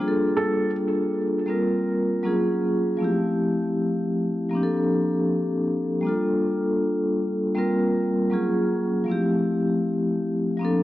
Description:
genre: hip hop.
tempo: 79 BPM.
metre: 4/4.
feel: swing 66% on 16ths.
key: F major.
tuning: A4 = 441 Hz.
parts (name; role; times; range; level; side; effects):
vibraphone with medium mallets; accompaniment; 0.0-10.8 s; F3 to Bb4; -21 LUFS; equal; cassette tape, low-pass filter.
felt-muted upright piano; melody; 0.4-0.7 s; A4; -29 LUFS; right 3 dB; low-pass filter, tape echo.
room: moderate plate reverb, RT60 3.0 s.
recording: cassette tape.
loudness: -21 LUFS.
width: side -15 dB against mid.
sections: 0.0-10.8 A section.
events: none.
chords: 0.0 Gm9; 1.5 C7sus4; 2.2 Gbmaj9; 3.0 Fmaj9; 4.5 Bbmaj9/F; 6.0 Gm9; 7.6 C7sus4; 8.3 Gbmaj9; 9.1 Fmaj9.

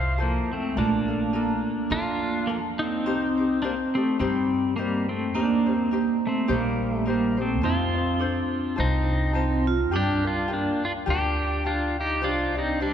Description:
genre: Hawaiian.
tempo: 105 BPM.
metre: 4/4.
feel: swing 57% on 8ths.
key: Bb major.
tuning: A4 = 439 Hz.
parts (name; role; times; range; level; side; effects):
pedal steel guitar; melody; 0.0-12.9 s; F3 to F5; -26 LUFS; left 2 dB; none.
ukulele; accompaniment; 0.0-12.9 s; D4 to D5; -32 LUFS; left 4 dB; none.
upright bass; bass; 0.0-12.9 s; Bb1 to G2; -29 LUFS; equal; none.
vibraphone with medium hard mallets; second line; 0.7-12.9 s; Ab3 to F4; -27 LUFS; right 4 dB; none.
room: wet church reverb, RT60 3.5 s.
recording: recorded in a church or concert hall, nothing above 10.7 kHz.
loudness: -22 LUFS.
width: side -9 dB against mid.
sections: 0.8-12.9 A section.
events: none.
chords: 0.0 Fmaj7; 0.8 Bbmaj7; 3.1 Cm7; 5.3 Eb6; 7.6 F7; 9.9 Gm7; 12.2 Cmadd9.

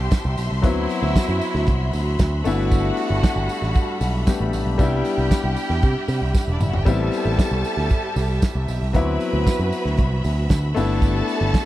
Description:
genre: disco.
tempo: 116 BPM.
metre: 4/4.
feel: straight.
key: unclear.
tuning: A4 = 438 Hz.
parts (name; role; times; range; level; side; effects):
rich studio string section; second line; 0.0-11.7 s; D4 to B5; -28 LUFS; right 2 dB; none.
clear baby grand piano; accompaniment; 0.0-11.7 s; F#3 to G4; -26 LUFS; left 5 dB; none.
clear symphonic string section; sustained chords; 0.0-11.7 s; G3 to C6; -30 LUFS; right 1 dB; none.
picked electric bass with an envelope filter; bass; 0.0-11.5 s; E1 to C3; -22 LUFS; right 1 dB; none.
warm soul drum kit; drums; 0.1-11.7 s; hi-hat, kick drum, snare drum, toms; -19 LUFS; right 1 dB; none.
tambourine; percussion; 0.1-11.7 s; none; -42 LUFS; right 11 dB; none.
room: little or no reverb.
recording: none.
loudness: -18 LUFS.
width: side -14 dB against mid.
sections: 0.0-11.7 A section.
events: drum fill 6.3-6.9.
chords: 0.0 Am7; 0.6 D13; 2.5 G69; 4.8 Cmaj7; 6.9 Am7; 8.9 D13; 10.8 G69.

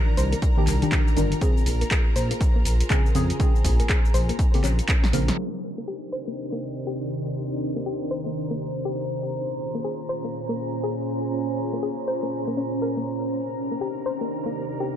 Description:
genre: deep house.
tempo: 121 BPM.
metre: 4/4.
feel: swing 61% on 16ths.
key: C minor.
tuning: A4 = 440 Hz.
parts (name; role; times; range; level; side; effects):
soft string machine; sustained chords; 0.0-15.0 s; Bb2 to C5; -32 LUFS; equal; ensemble chorus, sidechain pumping.
soft round pluck; arpeggios; 0.0-14.9 s; Bb3 to C5; -32 LUFS; left 3 dB; chorus, sidechain pumping, ping-pong delay.
deep mellow chord stab; stabs; 0.0-5.4 s; Db3 to Bb4; -28 LUFS; equal; chorus, phaser, sidechain pumping, digital delay.
deep dark ambient pad; texture; 0.0-15.0 s; Eb3 to Bb5; -31 LUFS; right 1 dB; chorus, built-in reverb, sidechain pumping.
warm studio violin section; texture; 0.0-5.4, 13.3-15.0 s; Bb4 to Bb5; -38 LUFS; equal; none.
smooth synth bass; bass; 0.2-5.3 s; G1 to F2; -23 LUFS; equal; tube saturation, sidechain pumping.
punchy analog drum machine; drums; 0.2-5.5 s; cabasa, crash cymbal, handclaps, hi-hat, snare drum; -30 LUFS; equal; low-pass filter on hats, low-pass filter on snare, low-pass filter on perc, low-pass filter on cymbals, low-pass filter on room.
electronic kick drum; drums; 0.4-5.0 s; none; -21 LUFS; equal; none.
room: light reverb.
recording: dark, warm production, low-pass filter.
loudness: -22 LUFS.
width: side -10 dB against mid.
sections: 0.0-5.4 A section; 5.4-15.0 B section.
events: drum fill 5.0-5.4; band accent 5.3; filter sweep on string machine 5.4-15.0; filter sweep on synth arpeggio sound 5.4-15.0; filter sweep 5.4-15.0.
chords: 0.0 Cm9; 1.4 Bbm9; 5.4 Cm9; 9.3 Bbm9; 13.3 Cm9.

